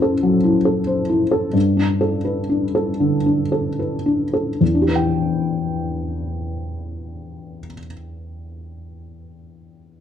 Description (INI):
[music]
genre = classical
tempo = 36-48 BPM (dotted quarters)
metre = 6/8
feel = rubato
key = E minor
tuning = A4 = 439 Hz
[part]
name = felt-muted upright piano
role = accompaniment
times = 0.0-10.0 s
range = E2 to G5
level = -18 LUFS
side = left 1 dB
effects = none
[sound]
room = light reverb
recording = dark, warm production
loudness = -17 LUFS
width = side -9 dB against mid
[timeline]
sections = 0.0-4.6 A section; 4.6-7.8 B section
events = slowing down 0.0-4.6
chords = 0.0 F#m7b5; 1.5 Gadd9; 4.6 Em7